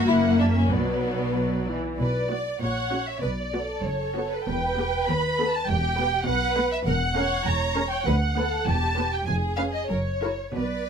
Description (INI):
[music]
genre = quick classical-period movement for string orchestra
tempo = 89-102 BPM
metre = 2/4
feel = rubato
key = B minor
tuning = A4 = 439 Hz
[part]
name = warm studio violin section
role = melody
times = 0.0-10.9 s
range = B4 to B5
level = -28 LUFS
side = right 1 dB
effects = none
[part]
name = rich studio violin section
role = second line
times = 0.0-10.9 s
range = B3 to D5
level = -29 LUFS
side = equal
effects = none
[part]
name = warm studio viola section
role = accompaniment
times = 0.0-10.5 s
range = E3 to B4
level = -27 LUFS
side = left 2 dB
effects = none
[part]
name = warm studio cello section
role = bass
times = 0.0-10.9 s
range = D2 to B2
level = -31 LUFS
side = right 2 dB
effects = none
[part]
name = warm studio double bass section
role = bass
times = 0.0-10.9 s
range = E1 to D#2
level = -29 LUFS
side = right 1 dB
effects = none
[sound]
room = light reverb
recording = close, detailed microphones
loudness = -22 LUFS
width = side -7 dB against mid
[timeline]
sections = 0.0-2.0 A section; 2.0-10.9 B section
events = none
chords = 0.1 F#7; 0.7 Bm; 2.6 F#/A#; 3.2 Bm; 4.5 Em; 5.1 B7/D#; 5.7 Em; 6.9 F#7/E; 8.1 Bm/D; 8.7 Em; 9.3 C#7/E#; 9.9 F#7